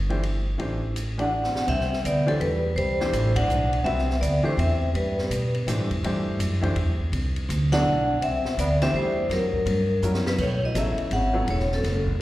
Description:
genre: modal jazz.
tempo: 165 BPM.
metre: 3/4.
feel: swing 64% on 8ths.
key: C lydian.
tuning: A4 = 439 Hz.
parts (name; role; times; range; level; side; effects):
upright bass; bass; 0.0-12.2 s; E1 to B2; -25 LUFS; equal; none.
clear upright piano; accompaniment; 0.1-11.5 s; E3 to E5; -29 LUFS; left 1 dB; slapback echo.
open jazz drum kit; drums; 0.1-12.1 s; crash cymbal, hi-hat, kick drum, ride cymbal, snare drum; -33 LUFS; equal; none.
vibraphone with medium hard mallets; melody; 1.2-5.6, 7.7-12.1 s; A4 to F#5; -26 LUFS; left 1 dB; slapback echo.
breathy trombone; second line; 1.2-5.6, 7.7-12.1 s; F#2 to D4; -30 LUFS; right 1 dB; slapback echo.
room: light reverb.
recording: live gig heard through the venue's PA, recital hall reverb.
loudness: -22 LUFS.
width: side -16 dB against mid.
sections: 0.0-1.7 A section; 1.7-10.4 B section; 10.4-12.2 C section.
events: drum fill 1.3-1.7, 10.0-10.4; band accent 3.3, 7.7.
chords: 0.0 D9sus4; 1.7 Cmaj9; 9.3 F#7b9; 10.4 B13sus4.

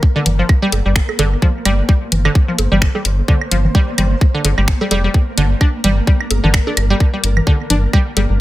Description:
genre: minimal techno.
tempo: 129 BPM.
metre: 4/4.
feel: swing 56% on 16ths.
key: G minor.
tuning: A4 = 441 Hz.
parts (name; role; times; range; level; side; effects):
electronic kick drum; drums; 0.0-8.0 s; none; -13 LUFS; equal; studio reverb.
flickering grainy texture; texture; 0.0-8.4 s; Bb3 to C5; -26 LUFS; equal; built-in reverb, sidechain pumping.
resonant blip pluck; riff; 0.2-8.2 s; D3 to D4; -19 LUFS; equal; chorus, sidechain pumping, dub echo.
rubbery square bass; bass; 0.3-8.4 s; F1 to G1; -16 LUFS; equal; sidechain pumping.
garage drum kit; drums; 0.3-8.3 s; finger snaps, hi-hat; -18 LUFS; left 2 dB; studio reverb.
congas, woodblock and bongos; percussion; 0.3-8.3 s; none; -23 LUFS; right 2 dB; studio reverb, digital delay.
room: little or no reverb.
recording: none.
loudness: -12 LUFS.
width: side -16 dB against mid.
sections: 0.0-8.4 A section.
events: none.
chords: 0.0 Gm.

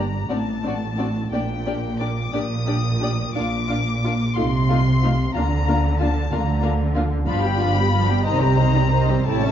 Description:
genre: classical, slow romantic movement for string orchestra.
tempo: 60 BPM (dotted quarters).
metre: 6/8.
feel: rubato.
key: G minor.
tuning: A4 = 440 Hz.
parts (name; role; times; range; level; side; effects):
warm chamber violin section; melody; 0.0-9.5 s; G5 to Eb6; -27 LUFS; left 6 dB; none.
dark chamber violin section; second line; 0.0-9.5 s; F4 to G5; -28 LUFS; left 4 dB; none.
warm chamber viola section; accompaniment; 0.0-9.5 s; Eb3 to E4; -27 LUFS; right 1 dB; none.
rich chamber double bass section; bass; 0.0-9.5 s; G1 to D2; -23 LUFS; right 2 dB; none.
warm chamber cello section; bass; 0.0-9.5 s; G2 to D3; -24 LUFS; right 2 dB; none.
room: moderate scoring stage reverb, RT60 1.5 s.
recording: dark, warm production, nothing above 7.5 kHz.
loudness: -18 LUFS.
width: side -10 dB against mid.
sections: 0.0-9.5 A section.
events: none.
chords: 0.3 D7(no3)/A; 1.3 Gm/Bb; 4.4 F7/C; 5.4 Bb/D; 7.3 G7; 8.3 Cm.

